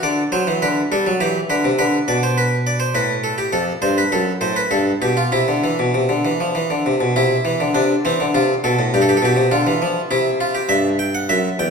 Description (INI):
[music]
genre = classical, baroque-style two-part invention for harpsichord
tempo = 102 BPM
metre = 3/4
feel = straight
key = C major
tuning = A4 = 440 Hz
[part]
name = harpsichord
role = solo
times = 0.0-11.7 s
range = E2 to G5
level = -16 LUFS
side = equal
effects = none
[sound]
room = wet recital hall reverb, RT60 1.6 s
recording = recorded in a church or concert hall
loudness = -16 LUFS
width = side -5 dB against mid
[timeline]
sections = 0.0-7.2 A section; 7.2-10.7 B section; 10.7-11.7 C section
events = none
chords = 0.0 D; 1.2 C/E; 1.8 Bm; 2.9 Asus2; 3.5 Fadd9; 4.1 F#dim; 4.7 G7; 5.3 C; 8.3 Amadd9; 8.9 G7; 10.1 C; 10.7 Em/G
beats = | 0.04 0.62 1.20 | 1.79 2.37 2.95 | 3.53 4.12 4.72 | 5.32 5.94 6.55 | 7.16 7.76 8.35 | 8.93 9.51 10.10 | 10.70 11.29